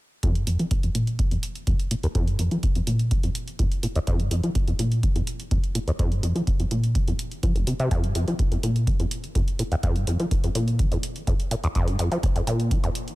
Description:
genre	acid house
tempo	125 BPM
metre	4/4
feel	straight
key	unclear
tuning	A4 = 440 Hz
part	deep acid bass	riff	0.2-12.9 s	F1 to F3	-24 LUFS	equal	overdrive, digital delay
part	electronic hi-hat	drums	0.2-13.2 s	none	-36 LUFS	right 2 dB	none
part	electronic kick drum	drums	0.2-12.8 s	none	-24 LUFS	equal	none
room	little or no reverb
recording	none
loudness	-22 LUFS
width	side -19 dB against mid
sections	0.2-13.2 A section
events	filter sweep on acid bass 0.2-13.2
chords	none

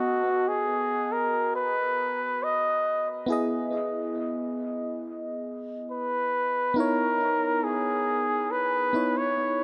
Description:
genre	reggae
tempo	69 BPM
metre	4/4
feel	straight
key	B major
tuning	A4 = 442 Hz
part	warm flugelhorn	melody	0.0-9.6 s	F#4 to D#5	-28 LUFS	equal	tape echo
part	FM electric piano	accompaniment	0.0-9.6 s	B3 to D#5	-33 LUFS	equal	chorus, dub echo
room	moderate plate reverb, RT60 3.5 s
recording	none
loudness	-27 LUFS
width	mono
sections	0.0-9.6 A section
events	none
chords	0.0 B; 3.3 Emaj7; 6.8 C#m9

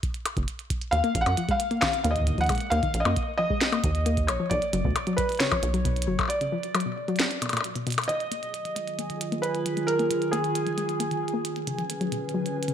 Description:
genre	IDM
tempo	134 BPM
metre	4/4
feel	straight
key	Eb minor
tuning	A4 = 437 Hz
part	electronic kick drum	drums	0.0-6.3 s	none	-31 LUFS	right 1 dB	small room ambience
part	glitchy drum kit	drums	0.0-12.7 s	hi-hat, percussion blips, snare drum	-29 LUFS	left 1 dB	small room ambience
part	rubbery square bass	bass	0.4-6.2 s	F#1 to Gb2	-27 LUFS	right 1 dB	none
part	felt-muted upright piano	melody	0.9-11.4 s	Ab4 to Gb5	-28 LUFS	equal	ping-pong delay
part	soft round pluck	arpeggios	1.0-12.7 s	Bb2 to Bb3	-31 LUFS	left 3 dB	chorus, ping-pong delay
part	warbly tape-like pad	sustained chords	8.8-12.7 s	D3 to B4	-30 LUFS	right 3 dB	chorus, built-in reverb
part	bubbling stepped-filter texture	texture	8.5-12.7 s	Ab4 to Ab5	-35 LUFS	equal	chorus, built-in reverb
room	moderate echo chamber reverb, RT60 1.3 s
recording	none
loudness	-24 LUFS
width	side -9 dB against mid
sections	0.0-8.1 A section; 8.1-12.7 B section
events	break 6.3-8.1; drum fill 7.9; filter sweep on ambient pad 8.1-12.7; filter sweep on synth arpeggio sound 8.1-12.7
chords	0.0 N.C.; 0.9 Ebsus2; 4.5 Bmadd9; 8.1 Ebmadd9; 11.7 Bmadd9

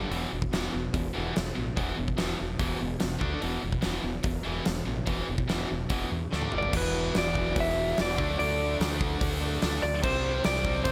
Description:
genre	hard rock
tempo	145 BPM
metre	4/4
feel	straight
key	E minor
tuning	A4 = 440 Hz
part	high-gain distorted guitar	riff	0.0-10.9 s	E2 to D4	-37 LUFS	equal	distortion
part	overdriven semi-hollow guitar	riff	0.0-10.9 s	E2 to D4	-37 LUFS	equal	none
part	growling fingered electric bass	bass	0.0-10.9 s	E1 to E2	-36 LUFS	equal	overdrive
part	huge arena drum kit	drums	0.1-10.9 s	crash cymbal, hi-hat, kick drum, snare drum, toms	-33 LUFS	equal	none
part	lightly driven lead guitar	melody	6.6-10.9 s	B4 to E5	-32 LUFS	equal	none
room	light reverb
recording	faint mains hum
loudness	-29 LUFS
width	mono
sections	0.0-6.7 A section; 6.7-10.9 B section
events	drum fill 6.3-6.7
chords	0.1 E5; 3.2 D5; 3.4 E5; 6.3 D5; 6.5 G5; 6.7 E5; 8.2 D5; 10.0 C5

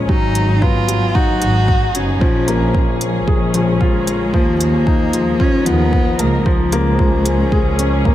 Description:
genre	piano and strings electronica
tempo	113 BPM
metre	4/4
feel	straight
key	G# dorian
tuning	A4 = 440 Hz
part	dark symphonic string section	sustained chords	0.0-8.1 s	E#3 to A#4	-25 LUFS	equal	sidechain pumping
part	warm upright piano	riff	0.0-8.1 s	E#3 to A#4	-19 LUFS	left 2 dB	low-pass filter, tape echo
part	warm studio double bass section	bass	0.0-8.1 s	F#1 to D#2	-18 LUFS	equal	sidechain pumping
part	dark cello	melody	0.1-8.1 s	G#3 to F#4	-20 LUFS	equal	tape echo
part	electronic kick drum	drums	0.1-8.1 s	none	-16 LUFS	equal	none
part	electronic hi-hat	drums	0.4-7.9 s	none	-24 LUFS	equal	overdrive
room	light reverb, small room ambience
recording	none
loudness	-13 LUFS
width	side -13 dB against mid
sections	0.0-8.1 A section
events	filter sweep on upright piano 0.0-8.1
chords	0.1 G#m7; 2.2 A#m7; 4.3 D#sus2; 6.5 C#6

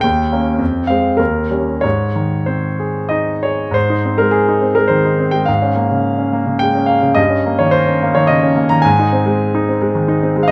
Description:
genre	classical, romantic character piece for solo piano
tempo	90-111 BPM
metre	3/4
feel	rubato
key	Ab major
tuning	A4 = 440 Hz
part	bright concert grand piano	solo	0.0-10.5 s	Eb2 to Bb5	-15 LUFS	equal	none
room	light reverb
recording	close, detailed microphones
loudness	-15 LUFS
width	mono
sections	0.0-3.8 A section; 3.8-10.5 B section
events	none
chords	0.0 Eb7; 0.6 Fm; 1.2 Eb7; 1.8 Ab; 5.5 Bbm7/Ab; 7.2 Eb7/G; 8.9 Ab

